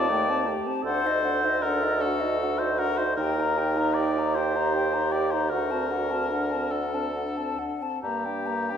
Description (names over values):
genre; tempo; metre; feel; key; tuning
classical, slow romantic movement for wind quintet; 44-54 BPM (dotted quarters); 12/8; rubato; unclear; A4 = 438 Hz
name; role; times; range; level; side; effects
mellow hollow silver concert flute; melody; 0.0-8.8 s; Eb5 to Bb5; -30 LUFS; left 6 dB; none
warm oboe; second line; 0.0-8.8 s; G4 to D5; -28 LUFS; left 2 dB; none
mellow French horn; accompaniment; 0.0-8.8 s; A3 to G4; -35 LUFS; equal; none
warm clarinet; accompaniment; 0.0-8.8 s; Bb3 to A4; -33 LUFS; right 6 dB; none
warm bassoon; bass; 0.0-8.8 s; D2 to G2; -29 LUFS; right 3 dB; none
room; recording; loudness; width
wet scoring stage reverb, RT60 2.2 s; recorded in a church or concert hall; -23 LUFS; side -8 dB against mid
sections
0.0-8.8 A section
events
none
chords
0.0 Am7b5/Eb; 0.8 D7b9; 3.2 Eb; 5.5 D7; 8.0 Gm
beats
0.84 2.00 | 3.17 4.34 5.50 6.71 | 8.03